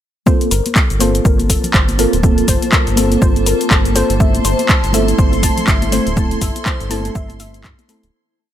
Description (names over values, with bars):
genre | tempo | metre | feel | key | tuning
deep house | 122 BPM | 4/4 | swing 58% on 16ths | G dorian | A4 = 440 Hz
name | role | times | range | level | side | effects
warbly dusty pluck | arpeggios | 0.3-7.9 s | E4 to A5 | -24 LUFS | left 2 dB | chorus, cassette tape, sidechain pumping, digital delay
mellow FM electric piano | stabs | 0.3-8.1 s | A3 to A4 | -19 LUFS | right 1 dB | chorus, phaser, sidechain pumping, ping-pong delay
electronic kick drum | drums | 0.3-7.8 s | none | -15 LUFS | equal | overdrive
punchy analog drum machine | drums | 0.3-8.1 s | handclaps, hi-hat, shaker | -19 LUFS | left 1 dB | overdrive
congas | percussion | 0.3-7.9 s | none | -28 LUFS | left 2 dB | none
granular cloud pad | texture | 1.2-8.1 s | Bb3 to A5 | -23 LUFS | left 1 dB | built-in reverb, sidechain pumping
round analog bass | bass | 0.5-8.1 s | D1 to G2 | -19 LUFS | equal | tube saturation, sidechain pumping
string machine, violins | texture | 4.2-8.1 s | C6 | -28 LUFS | equal | ensemble chorus
room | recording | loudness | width
digital ambience | none | -12 LUFS | side -11 dB against mid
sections
0.3-8.1 drop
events
drop 0.3-8.1; fade-out 5.5-8.1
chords
0.3 Gm11; 4.2 Am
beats
| 0.27 0.76 1.25 1.74 | 2.23 2.73 3.22 3.71 | 4.20 4.69 5.18 5.68 | 6.17 6.66 7.15 7.64